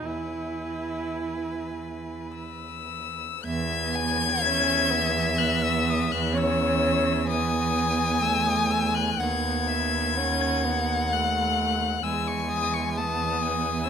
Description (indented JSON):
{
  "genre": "classical, slow romantic movement for string quartet",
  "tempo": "49-70 BPM",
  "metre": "3/4",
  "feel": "rubato",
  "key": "E major",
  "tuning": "A4 = 439 Hz",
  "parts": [
    { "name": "rich violin", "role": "melody", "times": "0.0-13.9 s", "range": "G#5 to G#6", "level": "-28 LUFS", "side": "left 7 dB", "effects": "none" },
    { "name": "clear violin", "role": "second line", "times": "0.0-13.9 s", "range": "B4 to A5", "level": "-29 LUFS", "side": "left 3 dB", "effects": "none" },
    { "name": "warm viola", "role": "accompaniment", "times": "0.0-13.9 s", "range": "G#3 to E4", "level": "-30 LUFS", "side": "right 4 dB", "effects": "none" },
    { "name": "rich cello", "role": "bass", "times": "0.0-13.9 s", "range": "D#2 to E2", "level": "-29 LUFS", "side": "right 3 dB", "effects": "none" }
  ],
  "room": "moderate recital hall reverb, RT60 1.4 s",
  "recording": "close, detailed microphones",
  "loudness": "-23 LUFS",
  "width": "side -7 dB against mid",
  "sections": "0.0-3.5 A section; 3.5-13.9 B section",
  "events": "none",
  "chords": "0.1 E; 6.3 Emaj13; 9.2 B/D#; 12.0 E",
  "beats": "| 0.08 1.18 2.35 | 3.45 4.43 5.40 | 6.35 7.28 8.22 | 9.19 10.17 11.12 | 12.04 12.97 13.84"
}